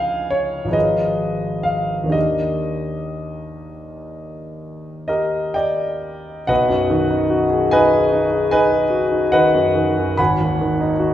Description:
classical, impressionist solo piano; 39-52 BPM (dotted quarters); 9/8; rubato; Eb major, B major from 6.5 s; A4 = 440 Hz
clear concert grand piano; solo; 0.0-11.1 s; Ab1 to B5; -17 LUFS; equal
wet recital hall reverb, RT60 1.6 s; heard from further back in the room; -16 LUFS; side -11 dB against mid
0.0-6.5 A section; 6.5-11.1 B section
0.0 Db69; 0.7 Abm6; 2.1 Ebmaj7; 6.5 B6; 10.2 G#m7
0.75 | 2.15 3.65 5.08 | 6.50 7.73 8.90 | 10.19

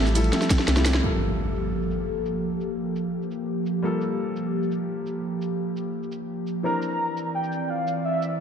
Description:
liquid drum and bass; 171 BPM; 4/4; straight; G dorian; A4 = 440 Hz
clear grand piano; accompaniment; 0.0-8.4 s; E3 to Bb4; -32 LUFS; left 3 dB; ping-pong delay
airy breathy pad; sustained chords; 0.0-8.4 s; E3 to E5; -27 LUFS; right 1 dB; chorus, sidechain pumping
warm sub bass; bass; 0.0-1.0 s; A1 to C2; -22 LUFS; equal; tube saturation
drum and bass drum kit; drums; 0.1-8.3 s; hi-hat, ride cymbal, shaker, snare drum; -26 LUFS; right 1 dB; low-pass filter on hats, low-pass filter on perc, low-pass filter on cymbals, low-pass filter on snare
electronic kick drum; drums; 0.5-0.6 s; -21 LUFS; equal
impact; sound effects; 1.0-2.4 s; -30 LUFS; equal
warm velvety synth lead; melody; 6.6-8.4 s; E5 to Bb5; -27 LUFS; right 1 dB; chorus, tape echo
moderate lush hall reverb, RT60 2.0 s; dark, warm production; -24 LUFS; side -7 dB against mid
0.0-1.0 A section; 1.0-8.4 B section
drop 0.0-1.0; drum fill 0.3-1.0; band accent 0.9; impact 1.0-2.4; filter sweep on analog synth pad 1.0-8.4
0.0 Fmaj9; 1.0 Gm9; 6.6 C9
0.33 0.68 | 1.03 1.38 1.73 2.08 | 2.43 2.79 3.14 3.49 | 3.84 4.19 4.54 4.89 | 5.24 5.59 5.94 6.29 | 6.64 7.00 7.35 7.70 | 8.05 8.40

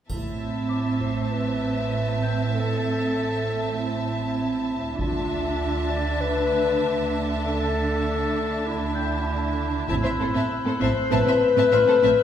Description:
cinematic, suspense film score; 98 BPM; 4/4; straight; A minor; A4 = 441 Hz
clear chamber violin section; melody; 0.1-12.1 s; C5 to A5; -34 LUFS; left 2 dB
mellow clarinet; second line; 0.1-12.2 s; E4 to D5; -25 LUFS; left 4 dB
rich chamber violin section; second line; 0.1-12.1 s; A4 to E5; -32 LUFS; equal
warm symphonic viola section; accompaniment; 0.1-12.1 s; C4 to D4; -29 LUFS; right 2 dB
rich chamber cello section; bass; 0.1-12.1 s; A2 to D3; -30 LUFS; right 4 dB
warm chamber double bass section; bass; 0.1-12.1 s; A1 to D2; -29 LUFS; right 2 dB
taiko ensemble; drums; 0.1-1.3, 5.0-6.2, 9.9-11.1 s; -34 LUFS; right 1 dB
triangle; percussion; 0.1-1.3 s; -48 LUFS; right 2 dB
warm chamber violin section; texture; 0.1-4.6, 9.9-12.2 s; E6 to A6; -38 LUFS; left 4 dB
large celesta; texture; 0.7-5.0, 8.9-12.2 s; G5 to G6; -39 LUFS; left 4 dB
wet recital hall reverb, RT60 1.4 s; heard from further back in the room; -21 LUFS; side -9 dB against mid
0.1-12.2 A section
0.1 Am; 5.0 Dsus2; 9.9 Am
| 0.09 0.70 1.32 1.93 | 2.54 3.15 3.77 4.38 | 4.99 5.60 6.21 6.83 | 7.44 8.05 8.66 9.28 | 9.89 10.50 11.11 11.72

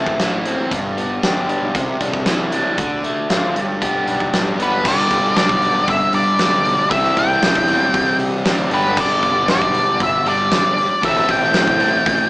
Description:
classic rock; 116 BPM; 4/4; straight; A4 = 440 Hz
cranked stack guitar; riff; 0.0-12.3 s; G2 to E4; -23 LUFS; right 2 dB; overdrive
crunchy overdriven guitar; riff; 0.0-12.3 s; G2 to A4; -22 LUFS; left 1 dB
fuzz fingered electric bass; bass; 0.0-12.2 s; G1 to C3; -26 LUFS; equal; overdrive
big rock drum kit; drums; 0.1-12.2 s; crash cymbal, hi-hat, kick drum, snare drum; -21 LUFS; equal
octave-fuzz lead guitar; melody; 4.6-12.3 s; B4 to G5; -16 LUFS; equal; distortion
moderate large studio reverb, RT60 1.2 s; band playing live in one room, small speaker sound; -14 LUFS; side -22 dB against mid
0.0-4.9 A section; 4.9-12.3 B section
0.0 Am; 0.7 G; 1.7 Cadd9; 2.8 Dm; 3.6 G; 6.9 C; 8.7 G; 11.0 Am
0.19 | 0.71 1.23 1.75 2.27 | 2.78 3.30 3.82 4.33 | 4.85 5.37 5.88 6.40 | 6.91 7.43 7.95 8.46 | 8.97 9.49 10.01 10.52 | 11.04 11.55 12.06

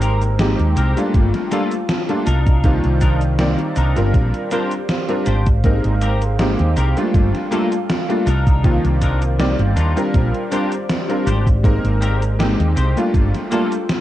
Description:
vaporwave; 80 BPM; 4/4; swing 53% on 16ths; A4 = 440 Hz
clear electric grand piano; accompaniment; 0.0-13.7 s; Eb3 to D5; -21 LUFS; left 1 dB; ensemble chorus, analog delay
warbly tape-like pad; sustained chords; 0.0-14.0 s; Eb3 to Bb5; -27 LUFS; right 1 dB; chorus, built-in reverb
clean electric guitar; riff; 0.0-13.7 s; Bb3 to C5; -28 LUFS; left 2 dB; ensemble chorus, analog delay
woody fretless electric bass; bass; 0.0-13.3 s; G1 to Eb2; -17 LUFS; equal
gated 80s digital drum machine; drums; 0.0-14.0 s; cabasa, hi-hat, snare drum; -24 LUFS; right 1 dB; gated reverb, gated reverb snare, vintage 12-bit sampler grit
electronic kick drum; drums; 1.1-13.3 s; -15 LUFS; equal; vintage 12-bit sampler grit
light reverb, digital ambience; dark, warm production, cassette tape, faint mains hum; -15 LUFS; side -14 dB against mid
0.0-14.0 A section
0.0 Abmaj9; 1.1 Gm9; 2.3 Cm9; 4.1 Bb69; 5.6 Abmaj9; 7.1 Gm9; 8.3 Cm9; 10.1 Bb69; 11.6 Abmaj9; 13.1 Gm9
0.40 | 1.15 1.90 2.65 3.40 | 4.15 4.90 5.65 6.40 | 7.15 7.90 8.65 9.40 | 10.15 10.90 11.65 12.40 | 13.15 13.90

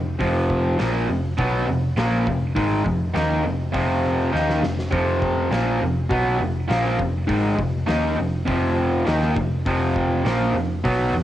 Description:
garage rock duo or trio; 101 BPM; 4/4; straight; A4 = 440 Hz
raw garage guitar; riff; 0.0-11.2 s; F2 to Eb4; -21 LUFS; equal; overdrive, cassette tape
hollow-body short-scale picked electric bass; bass; 0.0-11.2 s; F1 to Eb2; -25 LUFS; equal
oversized low-tuned drum kit; drums; 0.2-11.0 s; hi-hat, kick drum, snare drum; -29 LUFS; equal; cassette tape
light reverb, small room reverb; home recording on cassette; -19 LUFS; side -12 dB against mid
0.0-11.2 A section
drum fill 4.3-4.9
0.0 F5
| 0.20 0.79 1.38 1.97 | 2.56 3.15 3.74 4.34 | 4.93 5.52 6.11 6.71 | 7.30 7.89 8.49 9.08 | 9.67 10.27 10.86

